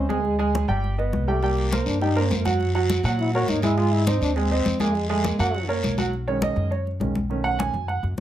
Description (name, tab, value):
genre	Afro-Cuban jazz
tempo	204 BPM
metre	4/4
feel	straight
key	unclear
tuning	A4 = 436 Hz
part	breathy trombone	second line	0.0-5.7 s	Ab3 to Gb4	-27 LUFS	left 2 dB	none
part	warm concert grand piano	accompaniment	0.0-8.0 s	D#3 to Ab5	-24 LUFS	right 4 dB	none
part	upright bass	bass	0.0-8.2 s	G1 to Bb2	-25 LUFS	equal	none
part	congas	percussion	0.1-8.2 s	none	-29 LUFS	left 3 dB	none
part	guiro	percussion	1.4-6.1 s	none	-35 LUFS	left 4 dB	none
room	light reverb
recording	none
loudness	-20 LUFS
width	side -12 dB against mid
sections	0.0-6.1 A section; 6.1-8.2 A section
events	trombone solo 0.0-6.1; grand piano solo 6.1-8.2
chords	0.2 G5; 0.8 Gaug; 1.4 Cm7; 2.6 Gbadd9; 3.8 Ab; 4.9 Fm; 5.5 Gb; 6.1 B69; 7.3 B9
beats	| 0.25 0.54 0.84 1.13 | 1.43 1.72 2.01 2.31 | 2.60 2.89 3.19 3.48 | 3.77 4.07 4.36 4.65 | 4.95 5.24 5.53 5.83 | 6.12 6.41 6.71 7.00 | 7.29 7.59 7.88 8.17